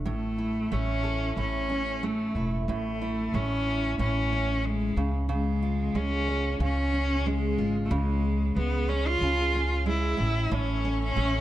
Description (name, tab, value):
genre	acoustic pop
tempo	92 BPM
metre	4/4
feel	swing 55% on 16ths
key	A major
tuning	A4 = 440 Hz
part	fingerpicked steel-string acoustic guitar	accompaniment	0.0-11.4 s	A2 to C#5	-31 LUFS	right 3 dB	none
part	upright bass	bass	0.0-11.4 s	E1 to C#2	-29 LUFS	equal	none
part	clear cello	melody	0.1-11.4 s	G#3 to E#4	-28 LUFS	left 1 dB	none
part	rich studio string section	sustained chords	10.5-11.4 s	A4 to C#6	-40 LUFS	left 5 dB	none
room	moderate studio reverb, RT60 0.6 s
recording	dark, warm production, lossy compression artefacts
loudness	-25 LUFS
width	side -14 dB against mid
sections	0.1-10.5 A section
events	none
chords	0.1 A; 5.0 C#; 10.2 A5; 10.5 A